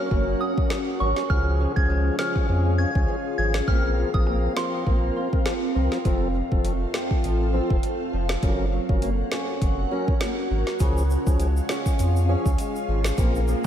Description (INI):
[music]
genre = dancehall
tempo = 101 BPM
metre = 4/4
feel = swing 56% on 16ths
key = unclear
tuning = A4 = 441 Hz
[part]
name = tonewheel organ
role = accompaniment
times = 0.0-13.7 s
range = F3 to Bb4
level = -30 LUFS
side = left 2 dB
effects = overdrive, stopped rotary speaker
[part]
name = ethereal airy pad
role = sustained chords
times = 0.0-13.7 s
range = C4 to Gb5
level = -29 LUFS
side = equal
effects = ensemble chorus, built-in reverb, phaser, sidechain pumping
[part]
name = fingerpicked old ladder-braced acoustic guitar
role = arpeggios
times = 0.0-13.7 s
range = F2 to Db4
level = -32 LUFS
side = equal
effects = lush chorus
[part]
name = warm sub bass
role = bass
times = 0.1-13.7 s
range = F1 to F2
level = -24 LUFS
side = equal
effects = none
[part]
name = afro-pop drum kit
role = drums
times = 0.1-13.7 s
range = hi-hat, kick drum, rim click, snare drum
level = -25 LUFS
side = equal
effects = none
[part]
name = soft synth bell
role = melody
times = 0.4-4.7 s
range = C6 to Ab6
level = -30 LUFS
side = right 1 dB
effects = chorus, phaser, analog delay
[part]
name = tube shaker and timbales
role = percussion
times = 10.8-13.7 s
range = none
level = -41 LUFS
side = right 1 dB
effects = none
[part]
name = swell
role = sound effects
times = 13.4-13.7 s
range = none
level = -30 LUFS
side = equal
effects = none
[sound]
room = moderate lush hall reverb, RT60 1.9 s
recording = dreamy mix soaked in reverb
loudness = -21 LUFS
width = side -10 dB against mid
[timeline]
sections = 0.0-6.1 A section; 6.1-13.7 B section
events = swell 13.4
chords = 0.0 Gb; 1.3 Db; 3.7 Bbsus2; 6.1 F; 8.4 Gb; 10.8 Db